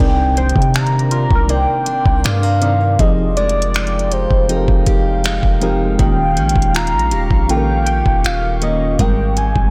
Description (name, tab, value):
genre	contemporary R&B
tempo	80 BPM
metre	4/4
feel	straight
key	unclear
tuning	A4 = 440 Hz
part	warm velvety synth lead	melody	0.0-9.7 s	C5 to Bb5	-22 LUFS	equal	chorus
part	mellow FM electric piano	accompaniment	0.0-9.7 s	Ab2 to D5	-24 LUFS	equal	chorus, tremolo
part	deep dark ambient pad	sustained chords	0.0-9.7 s	Ab3 to D6	-29 LUFS	equal	chorus, built-in reverb
part	picked steel-string acoustic guitar	arpeggios	0.0-9.7 s	C3 to G4	-28 LUFS	equal	none
part	long sustained 808-style bass	bass	0.0-9.7 s	Eb1 to C3	-20 LUFS	equal	none
part	impact	sound effects	0.0-3.0 s	none	-36 LUFS	equal	none
part	smooth R&B drum kit	drums	0.4-9.7 s	finger snaps, hi-hat, kick drum	-19 LUFS	equal	soft clipping on snare
part	glassy wavetable pluck	texture	0.4-3.1, 7.9-8.7 s	F4 to G5	-32 LUFS	equal	chorus, digital delay
room	light reverb, digital ambience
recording	blown-out, overdriven recording, overdrive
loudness	-15 LUFS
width	mono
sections	0.0-9.7 A section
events	impact 0.0-3.0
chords	0.0 Cm9; 3.0 Fm9; 6.0 Eb9; 9.0 Abmaj9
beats	0.74 1.49 2.24 | 2.99 3.74 4.49 5.24 | 5.99 6.74 7.49 8.24 | 8.99